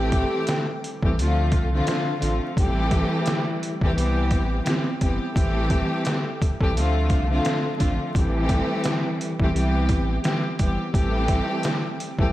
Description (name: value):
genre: hip hop, boom-bap hip-hop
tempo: 86 BPM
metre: 4/4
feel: swing 60% on 16ths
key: A minor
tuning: A4 = 440 Hz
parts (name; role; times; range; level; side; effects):
- warm studio string section; accompaniment; 0.0-12.3 s; D3 to G4; -24 LUFS; equal; cassette tape
- warm sub bass; bass; 0.0-12.3 s; G1 to D2; -24 LUFS; equal; none
- trip hop sampler-style drum kit; drums; 0.1-12.3 s; hi-hat, kick drum, snare drum; -24 LUFS; equal; overdrive, vintage 12-bit sampler grit
room: moderate plate reverb, RT60 2.2 s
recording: dreamy mix soaked in reverb, vinyl crackle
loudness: -20 LUFS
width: side -15 dB against mid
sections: 0.0-12.3 A section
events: none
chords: 0.0 Am7; 1.2 Dm7; 2.6 Am7; 4.0 Cmaj7; 5.4 Am7; 6.8 Dm7; 8.2 Am7; 9.5 Cmaj7; 10.9 Am7